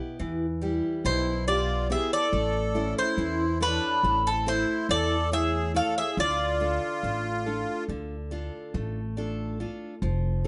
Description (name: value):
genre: greek folk, Greek bouzouki band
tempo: 140 BPM (eighths)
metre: 9/8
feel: straight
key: unclear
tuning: A4 = 439 Hz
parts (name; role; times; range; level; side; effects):
- picked steel-string acoustic guitar; accompaniment; 0.0-10.5 s; B2 to E5; -34 LUFS; equal; none
- upright bass; bass; 0.2-10.5 s; F1 to E2; -33 LUFS; equal; none
- Greek bouzouki; melody; 1.1-7.9 s; A4 to F5; -29 LUFS; equal; plate reverb
- accordion; second line; 1.1-7.8 s; C4 to A4; -35 LUFS; equal; light tremolo tuning
room: moderate studio reverb, RT60 0.6 s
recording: nothing above 10.7 kHz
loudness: -27 LUFS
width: mono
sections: 0.0-10.0 A section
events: none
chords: 0.0 Em; 2.3 A; 6.2 Dm